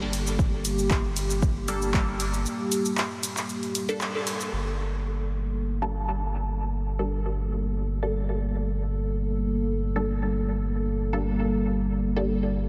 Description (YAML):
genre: dub techno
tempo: 116 BPM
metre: 4/4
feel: straight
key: G minor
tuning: A4 = 440 Hz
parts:
  - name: dark analog pad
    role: sustained chords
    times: 0.0-12.7 s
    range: G3 to A4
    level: -33 LUFS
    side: equal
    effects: chorus, sidechain pumping
  - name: round analog bass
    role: bass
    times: 0.0-12.7 s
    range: G1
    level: -31 LUFS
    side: equal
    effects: sidechain pumping
  - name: punchy analog drum machine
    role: drums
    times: 0.1-4.5 s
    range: handclaps, hi-hat, ride cymbal, shaker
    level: -34 LUFS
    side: equal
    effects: dub echo
  - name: electronic kick drum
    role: drums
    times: 0.4-2.1 s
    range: none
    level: -27 LUFS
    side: equal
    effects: overdrive
  - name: filtered dub chord stab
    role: stabs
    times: 1.7-12.3 s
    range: G3 to A4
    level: -36 LUFS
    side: equal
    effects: phaser, sidechain pumping, dub echo
room: moderate huge ambient reverb, RT60 3.8 s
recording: dreamy mix soaked in reverb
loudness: -27 LUFS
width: mono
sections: 0.0-4.5 A section; 4.5-12.7 B section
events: break 2.5-4.5; band accent 4.0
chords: 0.0 Gmadd9